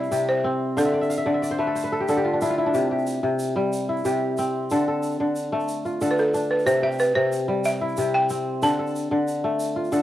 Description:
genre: west african traditional, West African string and xylophone music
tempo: 122 BPM (dotted quarters)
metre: 12/8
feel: straight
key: C major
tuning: A4 = 440 Hz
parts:
  - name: balafon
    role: melody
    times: 0.0-1.1, 6.1-9.0 s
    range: A4 to A5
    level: -23 LUFS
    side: right 1 dB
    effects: cassette tape
  - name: kora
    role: arpeggios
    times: 0.0-10.0 s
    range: C3 to F5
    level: -22 LUFS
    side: left 1 dB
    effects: cassette tape
  - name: tube shaker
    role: percussion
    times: 0.0-10.0 s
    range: none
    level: -41 LUFS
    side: right 4 dB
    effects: none
room: light reverb, small room ambience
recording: home recording on cassette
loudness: -21 LUFS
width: side -13 dB against mid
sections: 0.0-10.0 A section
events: kora fill 0.8-2.7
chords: 0.0 C; 0.8 D5; 2.7 C; 4.7 Dm; 6.7 C; 8.6 Dm

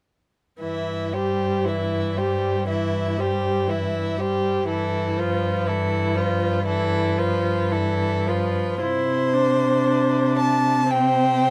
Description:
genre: classical, slow romantic movement for string quartet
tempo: 51-62 BPM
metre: 4/4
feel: rubato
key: C major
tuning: A4 = 438 Hz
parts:
  - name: clear violin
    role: melody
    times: 0.6-11.5 s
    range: A4 to A5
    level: -27 LUFS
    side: equal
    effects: none
  - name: rich violin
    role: second line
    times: 0.6-11.5 s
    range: E4 to C5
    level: -31 LUFS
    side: equal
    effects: none
  - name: rich viola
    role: accompaniment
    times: 0.6-11.5 s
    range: E3 to E4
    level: -27 LUFS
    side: equal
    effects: none
  - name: rich cello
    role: bass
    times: 0.6-11.5 s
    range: G2 to C3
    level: -27 LUFS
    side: equal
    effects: none
room: light reverb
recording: none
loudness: -22 LUFS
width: mono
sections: 0.6-8.8 A section; 8.8-11.5 B section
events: none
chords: 0.6 C/G; 4.7 G13; 8.8 C

